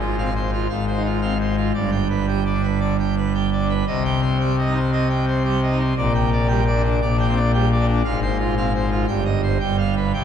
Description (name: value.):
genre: classical, organ toccata.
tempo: 115 BPM.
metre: 4/4.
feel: straight.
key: unclear.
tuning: A4 = 440 Hz.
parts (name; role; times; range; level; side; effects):
pipe organ, full organ; solo; 0.0-10.2 s; G1 to G5; -18 LUFS; equal; none.
room: wet church reverb, RT60 2.7 s.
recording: dark, warm production.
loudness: -18 LUFS.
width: side -8 dB against mid.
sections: 0.0-10.2 A section.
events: none.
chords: 0.0 Fm/Ab; 1.8 G; 3.9 Cm; 6.0 Gm/Bb; 8.0 Fm/Ab; 9.1 Cm/G; 9.6 G7.